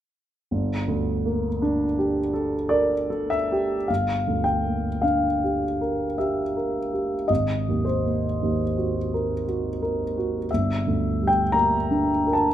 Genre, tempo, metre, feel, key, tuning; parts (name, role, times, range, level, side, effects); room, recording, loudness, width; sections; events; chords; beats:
classical, impressionist solo piano; 48-57 BPM; 3/4; rubato; G dorian; A4 = 440 Hz
warm grand piano; solo; 0.5-12.5 s; G1 to Bb5; -21 LUFS; equal
moderate large studio reverb, RT60 1.5 s; minimal, uncompressed stereo recording; -22 LUFS; side -11 dB against mid
0.5-3.9 A section; 3.9-12.5 B section
0.5 Gmadd9; 3.9 Gm7; 7.3 Ab9; 10.5 Gm
| 0.51 1.61 2.70 | 3.89 5.02 6.17 | 7.29 8.38 9.44 | 10.49 11.54